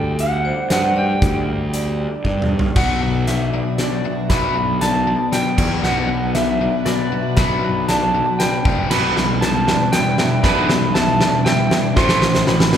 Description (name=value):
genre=post-rock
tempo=117 BPM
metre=3/4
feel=straight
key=unclear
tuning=A4 = 441 Hz
part: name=electric slide guitar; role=melody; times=0.0-12.8 s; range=D5 to C6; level=-21 LUFS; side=equal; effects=none
part: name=warm chamber string section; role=sustained chords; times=0.0-12.8 s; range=G3 to C5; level=-31 LUFS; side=equal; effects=none
part: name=electric guitar through a small old amp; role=arpeggios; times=0.0-12.8 s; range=A2 to B4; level=-27 LUFS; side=left 3 dB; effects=none
part: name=vibraphone with hard mallets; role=arpeggios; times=0.0-12.8 s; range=A4 to E5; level=-29 LUFS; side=right 3 dB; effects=none
part: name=fuzz fingered electric bass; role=bass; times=0.0-12.8 s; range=F1 to G2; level=-24 LUFS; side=right 1 dB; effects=overdrive
part: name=big rock drum kit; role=drums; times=0.2-12.8 s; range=crash cymbal, hi-hat, kick drum, snare drum, toms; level=-20 LUFS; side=equal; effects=none
part: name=biting overdriven guitar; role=riff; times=2.8-12.8 s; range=E2 to B3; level=-22 LUFS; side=left 5 dB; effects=none
part: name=distorted electric guitar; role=riff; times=8.9-12.8 s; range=A2 to B3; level=-22 LUFS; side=right 7 dB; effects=distortion
room=moderate concert hall reverb, RT60 2.4 s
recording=recorded in a church or concert hall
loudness=-15 LUFS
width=side -9 dB against mid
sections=0.0-2.8 A section; 2.8-12.8 B section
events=drum fill 2.2-2.8, 2.8-12.8; build-up 2.8-12.8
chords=0.0 Dsus4; 2.8 Bm; 5.6 E5; 5.8 Bm; 8.7 F5; 8.9 Em7/B; 12.0 Am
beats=0.20 0.71 | 1.23 1.74 2.25 | 2.76 3.28 3.79 | 4.30 4.82 5.33 | 5.84 6.35 6.87 | 7.38 7.89 8.40 | 8.91 9.42 9.93 | 10.45 10.96 11.46 | 11.97 12.48